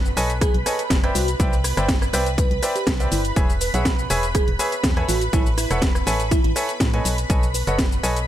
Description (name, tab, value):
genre	piano house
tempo	122 BPM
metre	4/4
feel	straight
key	E major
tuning	A4 = 440 Hz
part	analog string pad	sustained chords	0.0-8.3 s	B4 to B5	-29 LUFS	right 2 dB	ensemble chorus, sidechain pumping
part	organ-like FM bass	bass	0.0-8.3 s	E1 to A2	-25 LUFS	equal	tube saturation, sidechain pumping
part	house drum kit	drums	0.1-8.3 s	hi-hat, rim click, shaker, snare drum	-25 LUFS	equal	overdrive
part	bright baby grand piano	riff	0.2-8.2 s	G#4 to G#5	-26 LUFS	equal	sidechain pumping, ping-pong delay
part	bell-like FM electric piano	melody	0.4-7.7 s	E4 to B4	-29 LUFS	right 2 dB	chorus, phaser, ping-pong delay
part	electronic kick drum	drums	0.4-7.9 s	none	-21 LUFS	equal	overdrive
room	digital ambience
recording	none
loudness	-18 LUFS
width	side -12 dB against mid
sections	0.0-8.3 A section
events	none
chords	0.0 B13; 1.2 Cmaj9; 3.4 E6; 5.1 Amaj9; 7.1 B13